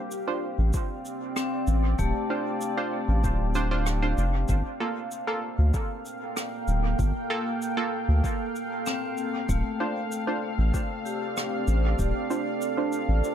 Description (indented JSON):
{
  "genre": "ambient dub",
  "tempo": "96 BPM",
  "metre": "4/4",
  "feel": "straight",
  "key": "unclear",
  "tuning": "A4 = 440 Hz",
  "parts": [
    { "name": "deep dark ambient pad", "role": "sustained chords", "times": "0.0-13.3 s", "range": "Bb3 to G5", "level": "-31 LUFS", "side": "right 2 dB", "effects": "chorus, built-in reverb" },
    { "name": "shaker and rim click", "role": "drums", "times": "0.1-13.3 s", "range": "none", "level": "-37 LUFS", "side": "equal", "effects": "dub echo" },
    { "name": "filtered dub chord stab", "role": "stabs", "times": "0.3-13.0 s", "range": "Bb3 to C5", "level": "-32 LUFS", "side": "right 3 dB", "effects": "chorus, dub echo" },
    { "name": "soft dub sub bass", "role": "bass", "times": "0.6-13.2 s", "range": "D1 to D2", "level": "-23 LUFS", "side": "equal", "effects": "none" },
    { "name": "electronic kick drum", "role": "drums", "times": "0.7-12.1 s", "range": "none", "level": "-30 LUFS", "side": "equal", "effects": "overdrive" },
    { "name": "vibraphone with medium hard mallets", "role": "arpeggios", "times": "1.4-4.5, 8.9-13.3 s", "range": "A3 to A5", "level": "-33 LUFS", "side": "left 6 dB", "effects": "dub echo" }
  ],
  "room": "light reverb, small room ambience",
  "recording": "echo-heavy mix",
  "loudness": "-25 LUFS",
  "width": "side -10 dB against mid",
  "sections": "0.0-13.3 A section",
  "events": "none",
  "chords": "0.0 Dm7; 4.5 Gm9; 9.5 Dm7",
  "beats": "0.11 0.74 1.36 | 1.99 2.61 3.24 3.86 | 4.49 5.11 5.74 6.36 | 6.99 7.61 8.24 8.86 | 9.49 10.11 10.74 11.36 | 11.99 12.61 13.24"
}